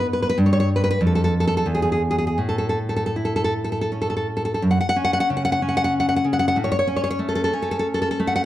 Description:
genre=romantic piece for solo classical guitar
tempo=78-97 BPM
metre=3/4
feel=rubato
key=A major, F# minor from 4.6 s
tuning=A4 = 440 Hz
part: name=nylon-string guitar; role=solo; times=0.0-8.5 s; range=E2 to F#5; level=-19 LUFS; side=equal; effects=none
room=moderate recital hall reverb, RT60 1.4 s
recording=dark, warm production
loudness=-19 LUFS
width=side -14 dB against mid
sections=0.0-4.6 A section; 4.6-8.5 B section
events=none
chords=0.4 N.C.; 2.4 A; 4.6 F#5; 6.6 A

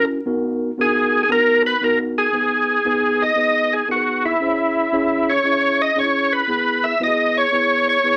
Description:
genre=soul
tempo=116 BPM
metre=4/4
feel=swing 66% on 8ths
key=unclear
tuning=A4 = 441 Hz
part: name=overdriven tonewheel organ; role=melody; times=0.0-8.2 s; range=E4 to E5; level=-19 LUFS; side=equal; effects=chorus vibrato
part: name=mellow tine electric piano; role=accompaniment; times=0.0-8.2 s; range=B3 to E5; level=-25 LUFS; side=equal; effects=none
room=moderate club reverb, RT60 0.7 s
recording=vinyl crackle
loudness=-18 LUFS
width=mono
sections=0.0-2.3 A section; 2.3-8.2 B section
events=none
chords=0.3 Bmaj7; 2.3 G#m; 4.4 C#m; 6.5 E

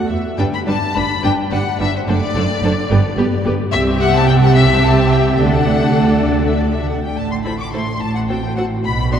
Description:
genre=quick classical-period movement for string orchestra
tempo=71 BPM (dotted quarters)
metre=6/8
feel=rubato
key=G major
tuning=A4 = 441 Hz
part: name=warm studio violin section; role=second line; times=0.0-9.2 s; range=F#4 to E5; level=-25 LUFS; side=left 3 dB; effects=none
part: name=warm studio viola section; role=accompaniment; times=0.0-9.2 s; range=G3 to G4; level=-19 LUFS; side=equal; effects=none
part: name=warm studio double bass section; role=bass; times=0.1-9.2 s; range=F#1 to E2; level=-20 LUFS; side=right 2 dB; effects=none
part: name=warm studio violin section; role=melody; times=0.4-9.2 s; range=C5 to D6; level=-21 LUFS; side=left 5 dB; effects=none
part: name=warm studio cello section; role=bass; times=0.4-9.2 s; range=F#2 to D3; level=-20 LUFS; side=right 2 dB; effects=none
room=wet cathedral reverb, RT60 4.9 s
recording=dark, warm production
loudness=-13 LUFS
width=side -8 dB against mid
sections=0.4-9.2 A section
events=none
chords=0.4 G; 2.1 D; 2.9 G; 3.7 C; 5.4 D; 7.2 Am; 8.0 F#dim/A

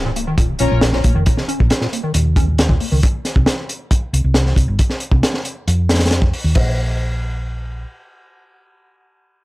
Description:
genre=breakbeat, breaks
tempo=136 BPM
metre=4/4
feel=straight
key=Bb dorian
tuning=A4 = 440 Hz
part: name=impact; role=sound effects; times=0.0-1.3 s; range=none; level=-31 LUFS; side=equal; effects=none
part: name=deep acid bass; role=riff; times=0.1-3.0 s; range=Ab2 to Db4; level=-23 LUFS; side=equal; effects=analog chorus, digital delay
part: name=crunchy breakbeat drum kit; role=drums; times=0.2-6.6 s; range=crash cymbal, hi-hat, kick drum, snare drum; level=-16 LUFS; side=equal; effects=none
part: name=warm studio string section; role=stabs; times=0.6-0.7 s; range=Db4 to Db5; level=-24 LUFS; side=left 5 dB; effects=digital delay
part: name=hollow-body short-scale fingered electric bass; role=bass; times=0.6-7.8 s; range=F1 to F2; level=-17 LUFS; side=equal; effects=low-pass filter
room=small room ambience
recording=none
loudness=-14 LUFS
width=side -19 dB against mid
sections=0.0-6.6 A section; 6.6-9.4 B section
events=impact 0.0-1.3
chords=0.0 Bbm; 3.0 N.C.

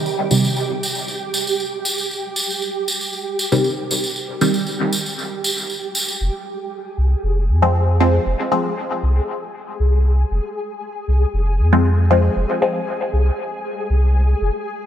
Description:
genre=dub techno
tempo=117 BPM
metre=4/4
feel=straight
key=F minor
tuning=A4 = 440 Hz
part: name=filtered dub chord stab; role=stabs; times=0.0-12.8 s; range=C3 to C4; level=-20 LUFS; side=equal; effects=phaser, vintage 12-bit sampler grit, dub echo
part: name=flickering grainy texture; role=texture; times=0.0-14.9 s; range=G4 to Ab4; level=-27 LUFS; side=right 1 dB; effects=built-in reverb, analog chorus
part: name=tambourine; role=percussion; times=0.1-6.2 s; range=none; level=-23 LUFS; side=right 1 dB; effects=none
part: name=soft dub sub bass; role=bass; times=6.2-14.5 s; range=F1 to F2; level=-15 LUFS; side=equal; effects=none
room=moderate lush hall reverb, RT60 2.7 s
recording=bright 1980s-style digital production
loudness=-17 LUFS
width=side -10 dB against mid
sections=0.0-6.2 A section; 6.2-14.9 B section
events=none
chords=0.0 N.C.; 6.2 Fm

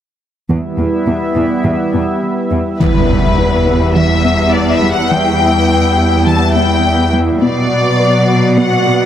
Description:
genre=cinematic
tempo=104 BPM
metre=4/4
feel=straight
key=E minor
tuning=A4 = 440 Hz
part: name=chorused pulse-width pad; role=sustained chords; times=0.6-9.1 s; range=F#3 to E5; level=-15 LUFS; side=right 1 dB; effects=none
part: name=soft round pluck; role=arpeggios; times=0.5-9.0 s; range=E3 to B4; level=-20 LUFS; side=equal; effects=none
part: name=rich symphonic cello section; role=bass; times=0.5-9.1 s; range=E2 to B2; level=-15 LUFS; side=equal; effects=none
part: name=warm symphonic violin section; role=melody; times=2.8-9.1 s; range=B4 to A5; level=-16 LUFS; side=left 4 dB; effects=none
part: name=impact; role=sound effects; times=2.8-5.1 s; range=none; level=-18 LUFS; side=equal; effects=none
room=moderate scoring stage reverb, RT60 2.1 s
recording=none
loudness=-10 LUFS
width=side -10 dB against mid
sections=0.5-2.8 A section; 2.8-9.1 B section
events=impact 2.8-5.1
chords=0.5 Em; 7.4 Bm

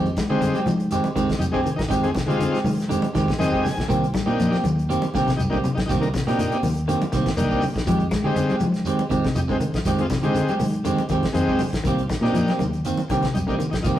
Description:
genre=afrobeat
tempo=121 BPM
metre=4/4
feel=swing 53% on 16ths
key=F dorian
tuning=A4 = 440 Hz
part: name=semi-hollow electric guitar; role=arpeggios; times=0.0-13.7 s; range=C3 to Ab3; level=-28 LUFS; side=left 2 dB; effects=slapback echo
part: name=clean electric guitar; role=stabs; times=0.0-14.0 s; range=Eb3 to G4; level=-24 LUFS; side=right 2 dB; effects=none
part: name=fingered electric bass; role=bass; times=0.0-14.0 s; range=C2 to D3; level=-27 LUFS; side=equal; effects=none
part: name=damped 70s drum kit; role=drums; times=0.1-14.0 s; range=hi-hat, kick drum, snare drum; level=-29 LUFS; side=equal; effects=none
part: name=shekere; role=percussion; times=0.1-14.0 s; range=none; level=-35 LUFS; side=left 1 dB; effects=none
part: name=congas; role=percussion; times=0.2-13.8 s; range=none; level=-30 LUFS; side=equal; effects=none
part: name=combo organ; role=accompaniment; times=0.3-14.0 s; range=Ab3 to Ab5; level=-26 LUFS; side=left 2 dB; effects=none
room=wet stone room reverb, RT60 1.2 s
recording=rough rehearsal-room recording, warm saturation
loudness=-19 LUFS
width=side -12 dB against mid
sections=0.0-14.0 A section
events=transistor combo organ fill 3.2-3.9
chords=0.0 Fm9; 3.9 Cm7; 7.9 Fm9; 11.8 Cm7

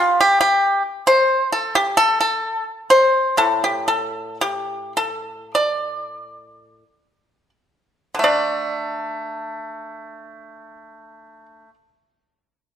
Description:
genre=chinese traditional, Chinese solo plucked strings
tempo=42-69 BPM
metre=4/4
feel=rubato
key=unclear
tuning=A4 = 445 Hz
part: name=pipa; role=solo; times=0.0-11.7 s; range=A2 to D5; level=-17 LUFS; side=equal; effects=none
room=moderate recital hall reverb, RT60 1.3 s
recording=none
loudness=-17 LUFS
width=side -9 dB against mid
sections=0.0-8.2 A section; 8.2-12.8 B section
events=slowing down 0.0-8.2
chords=none

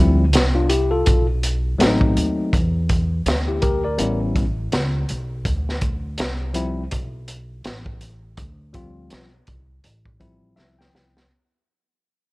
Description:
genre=hip hop, jazz-hop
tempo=82 BPM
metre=4/4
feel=swing 60% on 16ths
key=D dorian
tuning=A4 = 440 Hz
part: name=tine electric piano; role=accompaniment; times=0.0-11.3 s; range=F3 to G5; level=-21 LUFS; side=left 2 dB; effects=none
part: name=upright bass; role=bass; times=0.0-11.3 s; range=A1 to E2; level=-22 LUFS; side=equal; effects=none
part: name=crunchy breakbeat drum kit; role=drums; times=0.3-11.3 s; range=hi-hat, kick drum, snare drum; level=-21 LUFS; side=equal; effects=none
room=small room ambience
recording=worn, warbling old tape, cassette tape, warbly pitch drift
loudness=-18 LUFS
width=side -22 dB against mid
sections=0.0-11.3 A section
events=fade-out 0.0-11.3; tine electric piano fill 10.2-11.3; drum fill 10.6-11.3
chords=0.0 Dm11; 1.1 B7b9; 2.5 Gm6; 4.0 A7; 5.5 Dm11

